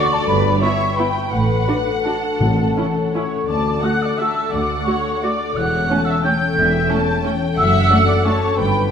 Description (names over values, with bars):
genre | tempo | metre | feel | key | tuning
classical, orchestral ballroom waltz | 159-192 BPM | 3/4 | rubato | D major | A4 = 441 Hz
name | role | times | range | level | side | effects
muted studio violin section | melody | 0.0-8.9 s | A4 to G5 | -28 LUFS | left 6 dB | none
mellow flute section | second line | 0.0-8.9 s | A5 to G6 | -21 LUFS | right 1 dB | none
muted studio violin section | second line | 0.0-8.9 s | C#5 to A5 | -25 LUFS | left 2 dB | none
muted studio viola section | accompaniment | 0.0-8.3 s | A3 to F#4 | -25 LUFS | right 1 dB | none
concert harp | arpeggios | 0.0-8.9 s | F#2 to A5 | -23 LUFS | left 6 dB | none
muted studio double bass section | bass | 0.3-8.9 s | E1 to D2 | -23 LUFS | right 4 dB | none
muted symphonic cello section | bass | 0.3-8.9 s | D2 to A2 | -26 LUFS | right 2 dB | none
timpani | percussion | 2.4-2.9 s | A2 | -24 LUFS | left 1 dB | none
room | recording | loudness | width
wet concert hall reverb, RT60 2.0 s | none | -15 LUFS | side -7 dB against mid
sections
0.0-8.9 A section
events
none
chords
0.3 Em/G; 1.3 D/A; 2.4 A; 3.5 D; 5.6 A7/E; 7.6 D/F#